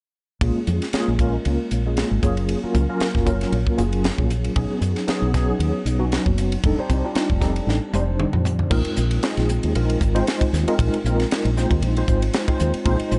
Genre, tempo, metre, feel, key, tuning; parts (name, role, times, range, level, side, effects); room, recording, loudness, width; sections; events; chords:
electric jazz fusion; 116 BPM; 4/4; swing 55% on 16ths; A4 = 440 Hz
mellow tine electric piano; accompaniment; 0.4-13.2 s; Gb3 to C5; -26 LUFS; equal; medium tremolo, ensemble chorus
woody fretless electric bass; bass; 0.4-13.2 s; F1 to F#2; -24 LUFS; equal; ensemble chorus
crisp fusion drum kit; drums; 0.4-13.2 s; crash cymbal, hi-hat, kick drum, ride cymbal, snare drum, toms; -27 LUFS; equal
light reverb; nothing above 10.7 kHz; -21 LUFS; mono
0.4-8.7 A section; 8.7-13.2 B section
drum fill 7.7-8.7
0.4 Bbm7; 2.2 Gbmaj9; 4.6 B69; 6.6 F13; 8.7 Bb9sus4